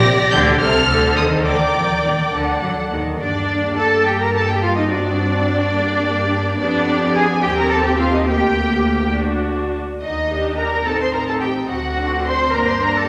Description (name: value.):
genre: quick classical-period movement for string orchestra.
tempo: 71 BPM (dotted quarters).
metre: 6/8.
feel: rubato.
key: G minor.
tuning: A4 = 440 Hz.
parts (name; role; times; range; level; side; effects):
clear chamber violin section; melody; 0.0-13.1 s; D5 to Bb6; -27 LUFS; equal; none.
rich studio violin section; second line; 0.0-13.1 s; G4 to C6; -26 LUFS; equal; none.
rich studio viola section; accompaniment; 0.0-13.1 s; Bb3 to D5; -24 LUFS; equal; none.
clear studio double bass section; bass; 0.0-13.1 s; A1 to G2; -25 LUFS; equal; none.
rich studio cello section; bass; 0.0-13.1 s; C3 to C5; -22 LUFS; equal; none.
room: wet concert hall reverb, RT60 2.0 s.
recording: none.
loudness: -18 LUFS.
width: mono.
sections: 0.0-3.2 A section; 3.2-13.1 B section.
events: none.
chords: 0.0 Gm; 0.6 Adim/C; 1.5 Gm/D; 2.3 D; 3.2 Gm; 4.9 D7/G; 5.7 Gm; 6.6 G7/F; 7.4 Cm/Eb; 8.3 Gm/D; 9.1 D; 10.0 Ebmaj7; 10.9 Adim; 11.7 D7; 12.5 Gm.